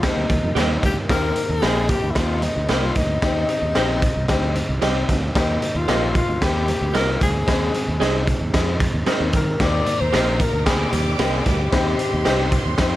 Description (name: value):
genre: uptempo 1960s-style soul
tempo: 113 BPM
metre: 4/4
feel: straight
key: Eb major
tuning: A4 = 440 Hz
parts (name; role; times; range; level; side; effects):
- breathy tenor saxophone; melody; 0.0-13.0 s; Eb4 to D5; -25 LUFS; left 3 dB; none
- clear baby grand piano; accompaniment; 0.0-13.0 s; Bb3 to Bb4; -27 LUFS; left 4 dB; none
- percussive tonewheel organ; sustained chords; 0.0-13.0 s; Eb3 to Eb4; -34 LUFS; right 2 dB; none
- fingered electric bass; bass; 0.0-13.0 s; Bb1 to Eb3; -24 LUFS; equal; none
- raw garage drum kit; drums; 0.0-12.9 s; hi-hat, kick drum, snare drum; -21 LUFS; equal; none
- congas; percussion; 0.0-12.9 s; none; -34 LUFS; right 2 dB; none
- electric guitar through a small old amp; stabs; 0.6-12.4 s; G4 to Eb5; -28 LUFS; right 8 dB; tape echo
- warm studio violin section; second line; 9.6-13.0 s; Bb4 to D6; -30 LUFS; right 2 dB; none
room: light reverb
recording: none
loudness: -18 LUFS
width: side -15 dB against mid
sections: 0.0-1.1 A section; 1.1-13.0 A section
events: none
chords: 0.0 Eb; 7.5 Ab; 9.6 Eb; 11.7 Cm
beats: 0.03 0.56 | 1.09 1.63 2.16 2.69 | 3.22 3.75 4.29 4.82 | 5.35 5.88 6.41 6.95 | 7.48 8.01 8.54 9.07 | 9.60 10.13 10.66 11.19 | 11.72 12.26 12.79